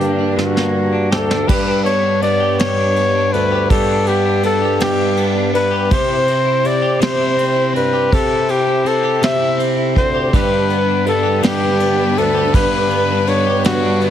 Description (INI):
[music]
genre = six-eight pop ballad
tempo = 54 BPM (dotted quarters)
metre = 6/8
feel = straight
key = unclear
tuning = A4 = 440 Hz
[part]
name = warm flugelhorn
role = melody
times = 0.0-14.1 s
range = F#4 to E5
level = -17 LUFS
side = left 2 dB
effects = digital delay
[part]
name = direct-recorded clean electric guitar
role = accompaniment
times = 0.0-14.1 s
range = G2 to G4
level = -19 LUFS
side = equal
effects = double-tracked left and right
[part]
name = warm studio string section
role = sustained chords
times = 0.0-1.5, 10.3-14.1 s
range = D3 to B4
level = -23 LUFS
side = right 1 dB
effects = none
[part]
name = mellow bassoon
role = bass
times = 0.0-14.1 s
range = D2 to C3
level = -20 LUFS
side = right 1 dB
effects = none
[part]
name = vintage brush drum kit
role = drums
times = 0.0-14.1 s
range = crash cymbal, hi-hat, kick drum, ride cymbal, snare drum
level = -22 LUFS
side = equal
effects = none
[sound]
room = small room ambience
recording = heavily compressed radio sound, multiband compression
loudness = -13 LUFS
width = side -10 dB against mid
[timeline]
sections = 0.0-1.5 A section; 1.5-14.1 B section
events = drum fill 0.4-1.5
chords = 0.0 Gm; 1.5 G; 5.9 C; 10.3 G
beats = 0.38 | 1.49 2.60 | 3.71 4.81 | 5.92 7.02 | 8.12 9.23 | 10.33 11.43 | 12.54 13.64